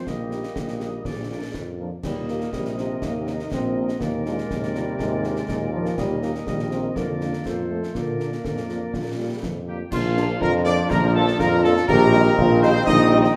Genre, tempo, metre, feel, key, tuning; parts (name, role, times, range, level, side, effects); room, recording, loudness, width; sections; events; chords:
military-style march for wind band; 122 BPM; 2/4; straight; Eb major, Bb major from 6.0 s; A4 = 440 Hz
clear woodwind section; second line; 0.0-13.3 s; F4 to Eb5; -34 LUFS; equal
warm euphonium; second line; 0.0-13.3 s; F3 to G4; -29 LUFS; equal
bright trombone section; sustained chords; 0.0-13.4 s; Bb2 to D4; -32 LUFS; equal
clear tuba; bass; 0.1-13.3 s; Bb1 to Bb2; -26 LUFS; equal
concert snare drum, concert bass drum and clash cymbals; drums; 0.1-13.4 s; -33 LUFS; equal
mellow trumpet section; melody; 0.3-13.3 s; F4 to Eb5; -29 LUFS; equal
dark French horn section; accompaniment; 0.3-13.2 s; F3 to G4; -32 LUFS; equal
wooden piccolo; second line; 9.7-13.3 s; F5 to Eb6; -30 LUFS; equal
wet large studio reverb, RT60 1.4 s; -22 LUFS; mono
0.0-9.9 A section; 9.9-13.4 B section
0.1 Eb/Bb; 1.1 Bb; 2.0 Eb; 4.0 Bb7/Eb; 6.0 Eb; 7.0 Bb/F; 7.5 F; 8.0 Bb; 11.9 Cm7/Bb